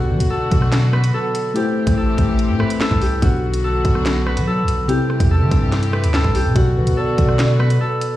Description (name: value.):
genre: hip hop, drill.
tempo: 144 BPM.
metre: 4/4.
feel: half-time.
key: B phrygian.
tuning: A4 = 440 Hz.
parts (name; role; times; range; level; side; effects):
Celtic harp; melody; 0.0-8.2 s; F#4 to B4; -22 LUFS; equal; tape echo.
muted felt-like synth keys; accompaniment; 0.0-8.2 s; B2 to D5; -23 LUFS; left 2 dB; chorus.
warm studio string section; sustained chords; 0.0-8.2 s; D3 to G4; -26 LUFS; left 2 dB; none.
long sustained 808-style bass; bass; 0.0-7.8 s; A1 to F#3; -18 LUFS; equal; none.
drill drum kit; drums; 0.2-8.1 s; finger snaps, hi-hat, kick drum, rim click, snare drum; -20 LUFS; equal; none.
gliding portamento lead; second line; 6.8-8.2 s; B4 to D5; -28 LUFS; right 3 dB; chorus, tape echo.
room: little or no reverb.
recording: played on a big sound system in a bare room, stone room reverb.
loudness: -15 LUFS.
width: side -14 dB against mid.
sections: 0.0-8.2 A section.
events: none.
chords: 0.0 Bm; 1.6 Am7; 3.2 Bm; 4.9 C; 6.6 Bm.